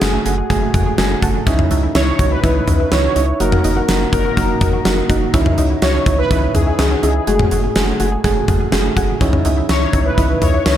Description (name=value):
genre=synth-pop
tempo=124 BPM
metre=4/4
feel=straight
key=C# minor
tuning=A4 = 440 Hz
part: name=analog synth brass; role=melody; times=0.0-10.8 s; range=G#4 to C#5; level=-22 LUFS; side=left 1 dB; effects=chorus, tape echo, shimmer reverb
part: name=soft electric-piano-like synth keys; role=accompaniment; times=0.0-10.8 s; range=A3 to A4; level=-20 LUFS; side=right 3 dB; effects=chorus, tape echo, shimmer reverb
part: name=analog pluck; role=arpeggios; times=0.0-10.8 s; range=E3 to G#4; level=-27 LUFS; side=left 2 dB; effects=none
part: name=rubbery square bass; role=bass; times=0.0-10.8 s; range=F#1 to C#2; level=-19 LUFS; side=equal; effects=none
part: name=gated 80s drum kit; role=drums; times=0.0-10.8 s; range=hi-hat, kick drum, snare drum, toms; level=-17 LUFS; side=equal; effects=tape echo
room=moderate plate reverb, RT60 1.0 s, small room reverb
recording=echo-heavy mix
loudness=-13 LUFS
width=side -11 dB against mid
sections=0.0-10.8 A section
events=none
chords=0.0 F#madd9; 1.5 C#madd9; 3.4 F#6; 5.3 C#madd9; 7.3 F#madd9; 9.2 C#madd9